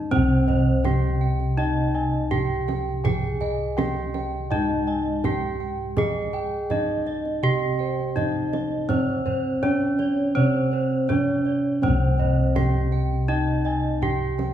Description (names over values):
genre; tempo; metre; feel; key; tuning
Javanese gamelan; 82 BPM; 4/4; straight; C pelog; A4 = 442 Hz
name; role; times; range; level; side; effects
gamelan-type bronze metallophone; melody; 0.0-14.5 s; C4 to Ab4-20c; -25 LUFS; right 1 dB; none
gamelan-type bossed gongs; bass; 0.0-14.5 s; C2 to Ab4-20c; -25 LUFS; equal; none
gamelan-type bossed gongs; arpeggios; 0.1-14.4 s; C5 to Ab5-20c; -32 LUFS; left 1 dB; none
gamelan-type bronze metallophone; arpeggios; 0.1-14.5 s; C5 to Ab5-20c; -32 LUFS; right 1 dB; none
kendang; percussion; 0.1-14.5 s; none; -30 LUFS; right 4 dB; none
room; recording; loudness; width
wet recital hall reverb, RT60 1.5 s; heard from further back in the room, small room ambience; -21 LUFS; side -10 dB against mid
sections
0.1-14.5 A section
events
none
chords
none